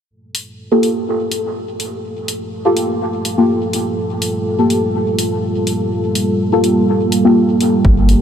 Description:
dub techno; 124 BPM; 4/4; straight; G minor; A4 = 440 Hz
dark analog pad; sustained chords; 0.1-8.2 s; G3 to Bb4; -18 LUFS; right 1 dB; chorus, sidechain pumping
electronic hi-hat; drums; 0.3-8.2 s; -23 LUFS; left 1 dB
deep mellow chord stab; stabs; 0.7-7.4 s; Bb3 to A4; -16 LUFS; left 1 dB; chorus, phaser, cassette tape, sidechain pumping, dub echo
soft dub sub bass; bass; 7.8-8.1 s; G1; -12 LUFS; equal; sidechain pumping
electronic kick drum; drums; 7.8-7.9 s; -13 LUFS; equal; overdrive
wet huge ambient reverb, RT60 8.3 s; dreamy mix soaked in reverb; -14 LUFS; side -8 dB against mid
0.1-8.2 A section
0.1 Gm9

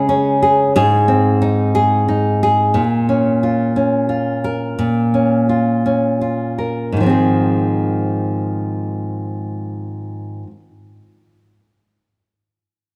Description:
pop; 52-60 BPM (dotted quarters); 6/8; straight; Ab major; A4 = 440 Hz
nylon-string guitar; solo; 0.0-10.6 s; Ab2 to Bb4; -17 LUFS; equal
moderate concert hall reverb, RT60 2.3 s; -17 LUFS; mono
0.0-2.7 A section; 2.7-7.0 B section; 7.0-11.6 C section
slowing down 2.7-7.0
0.0 Db5; 0.7 Ab; 2.7 Bbm; 7.0 Ab6

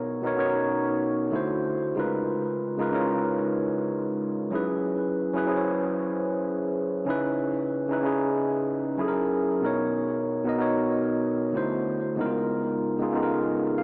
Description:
R&B; 94 BPM; 4/4; swing 59% on 16ths; A4 = 440 Hz
overdriven tine electric piano; solo; 0.0-13.8 s; B2 to E#5; -24 LUFS; equal; diffuse ambient delay
wet lush hall reverb, RT60 2.7 s; dreamy mix soaked in reverb, small speaker sound; -24 LUFS; side -28 dB against mid
0.0-13.8 A section
tine electric piano fill 13.5-13.8
0.0 Bmaj7; 1.3 D9; 2.0 C#13; 4.5 F#7sus4; 7.1 C#m9; 9.0 F#7; 9.6 Bmaj7; 11.5 D9; 12.2 C#13

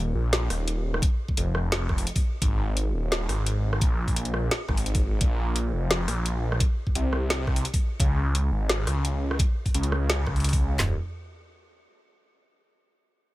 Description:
half-time drum and bass; 172 BPM; 4/4; half-time; A4 = 439 Hz
phased detuned saw bass; bass; 0.0-11.0 s; Eb1 to Db2; -25 LUFS; equal; phaser, tube saturation
drum and bass drum kit; drums; 0.3-10.6 s; hi-hat, rim click, snare drum; -29 LUFS; equal
trap drum kit; drums; 1.0-10.9 s; handclaps, kick drum, snare drum, toms; -25 LUFS; equal
little or no reverb; -23 LUFS; side -17 dB against mid
0.0-10.8 A section; 10.8-12.2 B section
drop 0.0-10.8

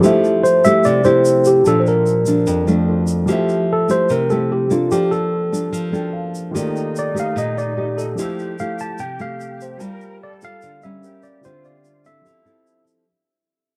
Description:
bossa nova; 147 BPM; 4/4; straight; F major; A4 = 438 Hz
nylon-string guitar; accompaniment; 0.0-13.1 s; F2 to A4; -21 LUFS; equal
warm grand piano; accompaniment; 0.0-13.1 s; D3 to E6; -26 LUFS; equal
tube shaker; percussion; 0.0-13.1 s; -37 LUFS; equal
tine electric piano; melody; 0.4-12.8 s; F4 to A5; -20 LUFS; equal
flute section; second line; 6.5-12.8 s; Eb4 to Bb4; -39 LUFS; equal
moderate plate reverb, RT60 3.6 s; dark, warm production; -17 LUFS; mono
0.0-13.1 A section
fade-out 1.3-13.1; grand piano fill 5.7-6.5
0.0 Fmaj9; 1.7 Bbmaj7; 3.3 Fmaj9; 4.9 Bbmaj7/F; 6.5 Ebmaj9#11; 8.2 Fmaj9; 9.8 Gm9; 11.0 Gdim7; 11.4 Dm11; 12.3 Fmaj7

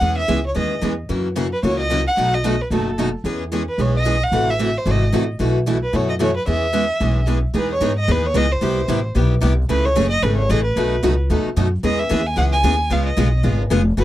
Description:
acoustic string swing (jazz manouche); 223 BPM; 4/4; swing 56% on 8ths; E major; A4 = 436 Hz
warm violin; melody; 0.0-14.0 s; A4 to G#5; -22 LUFS; right 1 dB
picked steel-string acoustic guitar; accompaniment; 0.0-14.0 s; B2 to G#4; -23 LUFS; left 4 dB
picked steel-string acoustic guitar; accompaniment; 0.0-14.0 s; B2 to B4; -25 LUFS; right 7 dB
upright bass; bass; 0.0-14.0 s; E#1 to G#2; -20 LUFS; equal
light reverb; dry, close 1970s-style studio recording; -16 LUFS; side -14 dB against mid
0.0-7.5 A section; 7.5-14.0 B section
0.0 C#m9; 1.1 F#7; 2.2 B7; 3.2 E6; 4.3 Am6; 5.4 B7sus4; 6.5 E6; 7.5 Emaj7; 8.6 Cmaj7; 9.7 Amaj7; 10.8 B7; 11.8 E6; 12.9 C#7

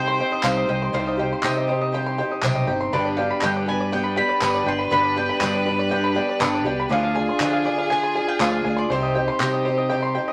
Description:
indie folk with a building arrangement; 120 BPM; 4/4; straight; C harmonic minor; A4 = 441 Hz
mandolin; melody; 0.0-10.3 s; C5 to C6; -29 LUFS; equal
rich fiddle; second line; 0.0-10.3 s; G4 to C5; -32 LUFS; equal
picked twelve-string acoustic guitar; accompaniment; 0.0-10.3 s; G2 to Ab4; -26 LUFS; equal
bluegrass banjo; arpeggios; 0.0-10.3 s; B4 to C6; -29 LUFS; equal
fingered electric bass; bass; 0.0-10.2 s; G1 to D3; -30 LUFS; equal
group handclap; percussion; 0.4-9.5 s; -28 LUFS; equal
tambourine; percussion; 0.4-9.5 s; -42 LUFS; equal
wet studio ambience, RT60 0.5 s; vinyl crackle; -22 LUFS; mono
0.0-10.3 A section
0.0 Cm; 2.9 G; 6.9 Ddim; 8.9 Cm

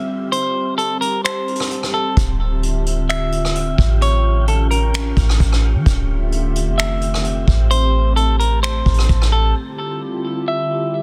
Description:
hip hop, atmospheric cloud-rap; 130 BPM; 4/4; half-time; D minor; A4 = 441 Hz
semi-hollow electric guitar; melody; 0.0-11.0 s; A4 to E5; -24 LUFS; equal; digital delay
warbly tape-like pad; sustained chords; 0.0-11.0 s; D3 to E5; -27 LUFS; equal; chorus, built-in reverb, sidechain pumping
wind-like tuned noise texture; texture; 0.0-9.5 s; F4 to A5; -39 LUFS; equal; built-in reverb
vintage brush drum kit; drums; 0.3-9.3 s; finger snaps, hi-hat, kick drum, rim click; -22 LUFS; equal; soft clipping on snare
clean 808-style bass; bass; 2.2-9.5 s; D1 to E3; -19 LUFS; equal
small room ambience; dense, heavily limited modern master; -18 LUFS; mono
0.0-9.6 A section; 9.6-11.0 B section
break 0.0-2.2
0.3 Am7; 2.2 Dm11; 4.0 A7b9b13; 5.9 Dm11; 7.7 Am7; 9.6 Dm11

